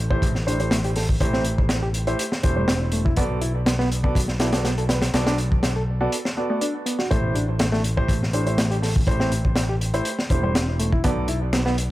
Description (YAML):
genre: breakbeat, breaks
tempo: 122 BPM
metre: 4/4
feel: straight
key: A dorian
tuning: A4 = 440 Hz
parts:
  - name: picked electric bass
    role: bass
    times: 0.0-11.9 s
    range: E1 to B1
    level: -24 LUFS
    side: equal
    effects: none
  - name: dark concert grand piano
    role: stabs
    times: 0.1-11.3 s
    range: A3 to D5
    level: -28 LUFS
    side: right 1 dB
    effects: dub echo
  - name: crunchy breakbeat drum kit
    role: drums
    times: 0.1-11.9 s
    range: hi-hat, kick drum, snare drum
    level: -23 LUFS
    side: equal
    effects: none
  - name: barky reed electric piano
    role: riff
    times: 0.5-11.8 s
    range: G3 to B4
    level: -28 LUFS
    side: equal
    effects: overdrive, vintage 12-bit sampler grit, dub echo
room: light reverb, studio ambience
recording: echo-heavy mix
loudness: -20 LUFS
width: side -16 dB against mid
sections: 0.0-11.9 A section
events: break 6.1-7.1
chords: 0.0 Am7; 3.2 Bm7; 7.1 Am7; 11.0 Bm7